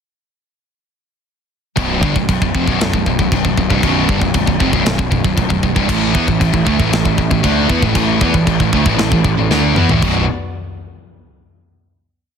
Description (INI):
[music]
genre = heavy metal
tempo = 116 BPM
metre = 4/4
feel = straight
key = B minor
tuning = A4 = 439 Hz
[part]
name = high-gain distorted guitar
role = riff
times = 1.8-10.2 s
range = B1 to D4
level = -19 LUFS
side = left 12 dB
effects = distortion
[part]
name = sludgy distorted guitar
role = riff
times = 1.8-10.2 s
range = B1 to D4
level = -18 LUFS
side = right 11 dB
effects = overdrive
[part]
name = fuzz picked electric bass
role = bass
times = 1.8-10.3 s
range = B0 to E2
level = -20 LUFS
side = left 1 dB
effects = overdrive
[part]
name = tight metal drum kit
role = drums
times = 1.8-10.1 s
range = china cymbal, crash cymbal, kick drum, snare drum, toms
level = -18 LUFS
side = left 1 dB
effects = none
[part]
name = dark studio string section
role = sustained chords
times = 5.9-10.3 s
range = A3 to E5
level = -27 LUFS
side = left 1 dB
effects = none
[sound]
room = studio ambience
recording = dense, heavily limited modern master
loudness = -12 LUFS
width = side -7 dB against mid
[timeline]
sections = 1.8-10.0 riff; 10.0-12.1 final chord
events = drum fill 9.5-10.0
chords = 1.8 B5; 5.9 A5; 10.0 B5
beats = | 1.77 2.29 2.80 3.31 | 3.83 4.34 4.86 5.37 | 5.89 6.40 6.92 7.43 | 7.95 8.47 8.98 9.50 | 10.02